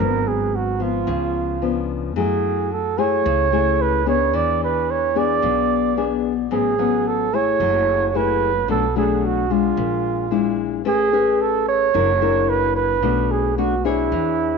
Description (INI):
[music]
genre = bossa nova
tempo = 110 BPM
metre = 4/4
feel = straight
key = unclear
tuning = A4 = 436 Hz
[part]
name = mellow flugelhorn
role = melody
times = 0.0-14.6 s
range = E4 to D5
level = -20 LUFS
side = right 9 dB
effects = none
[part]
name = nylon-string guitar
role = accompaniment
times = 0.0-14.6 s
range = G#2 to C#5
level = -21 LUFS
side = left 13 dB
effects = none
[part]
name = upright bass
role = bass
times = 0.0-14.6 s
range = F#1 to F#2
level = -27 LUFS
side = equal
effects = none
[sound]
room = light reverb, small room ambience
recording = 1960s-style stereo with parts hard left and right, nothing above 7.7 kHz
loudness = -17 LUFS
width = side -5 dB against mid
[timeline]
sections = 0.0-14.6 A section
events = none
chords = 0.0 G#m7b5; 1.1 C#7b9; 2.2 F#m9; 4.3 E7; 6.5 A69; 7.6 F#m9; 8.7 Bm7; 9.8 Bb7#11; 10.9 Amaj9; 11.9 F#7b13; 13.0 Bm7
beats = 0.53 1.07 1.62 | 2.16 2.71 3.25 3.79 | 4.33 4.88 5.42 5.97 | 6.51 7.05 7.60 8.14 | 8.68 9.23 9.77 10.31 | 10.86 11.40 11.95 12.49 | 13.03 13.58 14.12